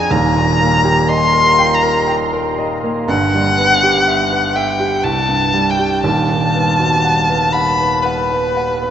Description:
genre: classical, romantic duo for violin and grand piano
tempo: 60 BPM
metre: 3/4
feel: rubato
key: unclear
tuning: A4 = 441 Hz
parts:
  - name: rich violin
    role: melody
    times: 0.0-8.9 s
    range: B4 to C6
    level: -15 LUFS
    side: left 2 dB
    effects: none
  - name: warm grand piano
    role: accompaniment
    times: 0.0-8.9 s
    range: Eb1 to G5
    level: -16 LUFS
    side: right 2 dB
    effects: none
room: wet cathedral reverb, RT60 6.2 s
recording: in a vast, echoing space, nothing above 8.0 kHz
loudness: -12 LUFS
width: side -9 dB against mid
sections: 0.0-8.9 A section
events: none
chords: 0.1 Eb; 3.1 Em/G; 5.0 C5; 6.0 B/D#

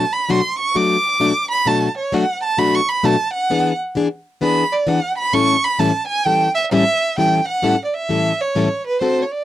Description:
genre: jazz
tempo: 130 BPM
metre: 4/4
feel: swing 63% on 8ths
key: A mixolydian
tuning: A4 = 440 Hz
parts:
  - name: warm violin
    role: melody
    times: 0.0-9.4 s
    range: B4 to D6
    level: -18 LUFS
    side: right 3 dB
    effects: none
  - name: picked plugged-in steel-string acoustic guitar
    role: accompaniment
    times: 0.0-9.2 s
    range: A2 to A4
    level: -17 LUFS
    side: left 3 dB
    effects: none
room: light reverb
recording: dry, close 1970s-style studio recording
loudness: -15 LUFS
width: side -13 dB against mid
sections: 0.0-7.2 A section; 7.2-9.4 B section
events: violin solo 0.0-7.2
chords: 0.0 Bm7; 3.5 E7; 5.3 A7

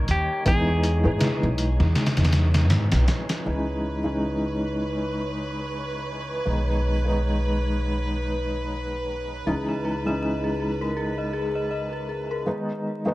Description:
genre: trip hop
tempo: 80 BPM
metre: 4/4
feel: swing 58% on 16ths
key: unclear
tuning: A4 = 440 Hz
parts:
  - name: clean electric guitar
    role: melody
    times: 0.0-2.7 s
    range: G4 to A#4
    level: -29 LUFS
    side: left 1 dB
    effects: tape echo
  - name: felt-muted upright piano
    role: accompaniment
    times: 0.0-13.1 s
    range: D#3 to D#4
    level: -28 LUFS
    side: equal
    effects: tremolo, tape echo
  - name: wind-like tuned noise texture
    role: texture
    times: 0.0-12.5 s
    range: C#5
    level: -41 LUFS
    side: right 1 dB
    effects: built-in reverb
  - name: upright bass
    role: bass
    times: 0.1-12.4 s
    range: B1 to G#2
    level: -25 LUFS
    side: equal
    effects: none
  - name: trip hop sampler-style drum kit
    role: drums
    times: 0.1-3.5 s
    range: hi-hat, kick drum, snare drum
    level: -24 LUFS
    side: equal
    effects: overdrive
  - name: clear chamber violin section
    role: sustained chords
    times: 3.5-12.5 s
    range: B4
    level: -32 LUFS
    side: right 1 dB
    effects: vintage 12-bit sampler grit
  - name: dark detuned synth bell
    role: arpeggios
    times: 9.5-12.5 s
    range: G#4 to D#5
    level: -30 LUFS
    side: left 1 dB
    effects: chorus, phaser, tape echo
room: light reverb, digital ambience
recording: vinyl crackle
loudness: -22 LUFS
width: side -18 dB against mid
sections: 0.0-3.5 A section; 3.5-13.1 B section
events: none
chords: 0.5 C#m7; 3.5 C#madd9; 6.5 G#m/B; 9.5 C#madd9; 12.5 G#m

